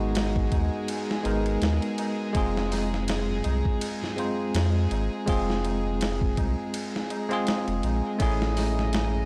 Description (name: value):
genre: trip hop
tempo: 82 BPM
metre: 4/4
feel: swing 56% on 16ths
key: unclear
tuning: A4 = 440 Hz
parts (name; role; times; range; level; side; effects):
- bell-like tine electric piano; accompaniment; 0.0-9.3 s; G#3 to C5; -31 LUFS; equal; harmonic tremolo, tape echo
- rich studio violin section; sustained chords; 0.0-9.3 s; G#3 to D#5; -38 LUFS; equal; vintage 12-bit sampler grit
- round analog bass; bass; 0.0-9.3 s; F1 to F2; -30 LUFS; equal; none
- tabla; percussion; 0.0-9.3 s; none; -42 LUFS; equal; none
- dusty soul sampler-style drum kit; drums; 0.1-9.1 s; hi-hat, kick drum, ride cymbal, snare drum; -33 LUFS; equal; none
room: digital ambience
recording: dry, gritty hardware recording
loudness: -27 LUFS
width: mono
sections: 0.0-9.3 A section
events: none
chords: 0.0 G#m7; 2.3 Fm; 8.2 Amaj7